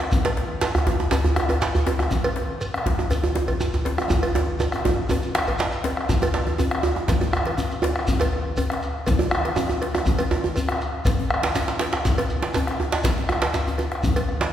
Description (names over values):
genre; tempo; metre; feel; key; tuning
west african traditional, West African drum ensemble; 121 BPM; 4/4; straight; none; none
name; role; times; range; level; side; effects
bombo; percussion; 0.0-14.3 s; none; -25 LUFS; left 1 dB; none
djembe; percussion; 0.0-14.3 s; none; -28 LUFS; left 3 dB; none
shekere; percussion; 0.1-14.2 s; none; -33 LUFS; equal; none
djembe; percussion; 0.2-14.5 s; none; -24 LUFS; right 2 dB; none
cowbell; percussion; 0.3-14.3 s; none; -31 LUFS; right 2 dB; none
room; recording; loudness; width
wet scoring stage reverb, RT60 1.9 s; recorded in a church or concert hall; -20 LUFS; side -10 dB against mid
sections
0.0-6.1 A section; 6.1-14.5 B section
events
drum fill 4.1-6.1, 13.4-14.0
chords
none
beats
| 0.12 0.62 1.12 1.62 | 2.12 2.61 3.11 3.61 | 4.11 4.61 5.10 5.60 | 6.10 6.59 7.09 7.59 | 8.09 8.58 9.08 9.57 | 10.07 10.57 11.06 11.56 | 12.05 12.55 13.04 13.54 | 14.03